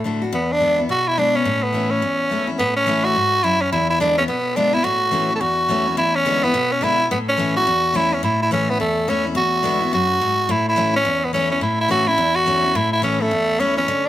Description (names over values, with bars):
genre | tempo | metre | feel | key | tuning
rock | 213 BPM | 4/4 | swing 61% on 8ths | A major | A4 = 440 Hz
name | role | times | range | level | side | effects
picked steel-string acoustic guitar | accompaniment | 0.0-14.1 s | E2 to F#4 | -22 LUFS | left 3 dB | none
raspy tenor saxophone | melody | 0.3-14.1 s | A3 to A4 | -18 LUFS | right 1 dB | none
room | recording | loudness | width
light reverb | none | -16 LUFS | side -13 dB against mid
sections
0.0-2.6 A section; 2.6-11.6 B section; 11.6-14.1 A section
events
none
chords
0.3 E7; 1.5 A; 3.7 E7; 4.8 A; 6.0 E7; 7.1 A; 9.4 E7; 10.5 A